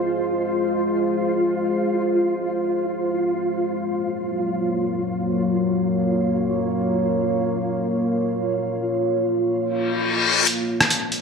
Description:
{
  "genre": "deep dubstep",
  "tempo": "free time",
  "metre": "none",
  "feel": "none",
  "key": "unclear",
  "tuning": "A4 = 440 Hz",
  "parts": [
    { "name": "deep dark ambient pad", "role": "sustained chords", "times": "0.0-11.2 s", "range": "Gb3 to Db5", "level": "-22 LUFS", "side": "equal", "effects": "chorus, built-in reverb, vintage 12-bit sampler grit" },
    { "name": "flickering grainy texture", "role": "texture", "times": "0.0-10.5 s", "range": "F4", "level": "-26 LUFS", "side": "right 1 dB", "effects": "built-in reverb" },
    { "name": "reverse cymbal and riser", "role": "sound effects", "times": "9.8-11.2 s", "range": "none", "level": "-20 LUFS", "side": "left 6 dB", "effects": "none" },
    { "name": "trip hop sampler-style drum kit", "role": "drums", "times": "10.5-11.2 s", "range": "hi-hat, rim click", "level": "-19 LUFS", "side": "equal", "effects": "none" }
  ],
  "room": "moderate echo chamber reverb, RT60 1.3 s, digital ambience",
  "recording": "none",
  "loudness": "-20 LUFS",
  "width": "side -5 dB against mid",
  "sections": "0.0-10.5 A section",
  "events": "reverse cymbal 9.8-10.5; riser 10.5-11.2",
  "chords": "0.0 Fm; 3.6 Gb; 10.5 Fm",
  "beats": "free time"
}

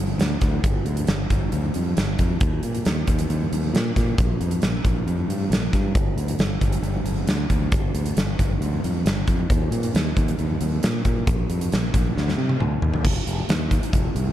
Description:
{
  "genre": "classic rock",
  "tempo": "135 BPM",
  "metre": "4/4",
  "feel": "straight",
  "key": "G minor",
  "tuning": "A4 = 440 Hz",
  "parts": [
    { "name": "growling fingered electric bass", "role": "bass", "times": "0.0-14.3 s", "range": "F1 to C3", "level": "-24 LUFS", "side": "equal", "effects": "overdrive" },
    { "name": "huge arena drum kit", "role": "drums", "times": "0.2-14.3 s", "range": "crash cymbal, hi-hat, kick drum, snare drum, toms", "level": "-22 LUFS", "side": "equal", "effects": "none" }
  ],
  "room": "little or no reverb",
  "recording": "none",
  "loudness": "-20 LUFS",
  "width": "side -12 dB against mid",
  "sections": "0.0-13.0 A section; 13.0-14.3 B section",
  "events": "drum fill 12.2-13.0",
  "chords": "none",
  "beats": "0.19 | 0.64 1.08 1.52 1.96 | 2.41 2.85 3.29 3.73 | 4.18 4.62 5.06 5.51 | 5.95 6.39 6.84 7.28 | 7.72 8.17 8.61 9.05 | 9.49 9.94 10.38 10.82 | 11.27 11.71 12.15 12.60 | 13.04 13.48 13.93"
}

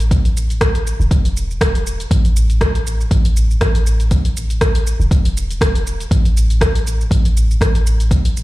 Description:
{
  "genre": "afro house",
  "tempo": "120 BPM",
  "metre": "4/4",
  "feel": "swing 55% on 16ths",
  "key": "unclear",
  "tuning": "A4 = 440 Hz",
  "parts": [
    { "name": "warm 808-style bass", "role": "bass", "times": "0.0-8.4 s", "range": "E1 to A1", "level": "-17 LUFS", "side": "equal", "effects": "sidechain pumping" },
    { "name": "deep house drum kit", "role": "drums", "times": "0.0-8.4 s", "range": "hi-hat, rim click, shaker", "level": "-23 LUFS", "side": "equal", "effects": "overdrive" },
    { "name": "electronic kick drum", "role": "drums", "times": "0.1-8.2 s", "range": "none", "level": "-15 LUFS", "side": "equal", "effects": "overdrive" }
  ],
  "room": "little or no reverb",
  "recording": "played on a big sound system in a bare room, large studio reverb",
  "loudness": "-13 LUFS",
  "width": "side -18 dB against mid",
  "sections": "0.0-8.4 A section",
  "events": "none",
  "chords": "none",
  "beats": "| 0.11 0.61 1.11 1.61 | 2.11 2.61 3.11 3.61 | 4.11 4.61 5.11 5.61 | 6.11 6.61 7.11 7.61 | 8.11"
}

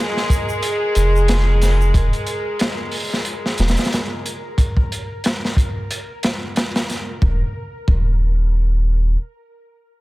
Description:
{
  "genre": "trip hop",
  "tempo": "91 BPM",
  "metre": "4/4",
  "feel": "swing 57% on 16ths",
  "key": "unclear",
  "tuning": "A4 = 440 Hz",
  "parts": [
    { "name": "warm studio violin section", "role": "sustained chords", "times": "0.0-4.6 s", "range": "Ab3 to Ab4", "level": "-23 LUFS", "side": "left 1 dB", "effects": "none" },
    { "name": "bowed-like drone", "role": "texture", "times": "0.0-7.2 s", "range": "Bb4", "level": "-33 LUFS", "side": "equal", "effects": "built-in reverb" },
    { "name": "crunchy breakbeat drum kit", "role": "drums", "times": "0.2-8.1 s", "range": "hi-hat, kick drum, snare drum", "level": "-20 LUFS", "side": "equal", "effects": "none" },
    { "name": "egg shaker and triangle", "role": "percussion", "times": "0.3-1.9 s", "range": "none", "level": "-39 LUFS", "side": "equal", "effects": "none" },
    { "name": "round analog bass", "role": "bass", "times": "1.0-9.2 s", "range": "Eb1 to F1", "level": "-16 LUFS", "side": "equal", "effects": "none" }
  ],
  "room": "little or no reverb",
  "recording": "none",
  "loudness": "-17 LUFS",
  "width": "side -19 dB against mid",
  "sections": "0.0-7.2 A section; 7.2-9.9 B section",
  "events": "none",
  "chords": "0.0 Fm; 1.9 N.C.",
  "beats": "0.63 1.29 | 1.95 2.61 3.27 3.93 | 4.59 5.25 5.90 6.56 | 7.22 7.88 8.54"
}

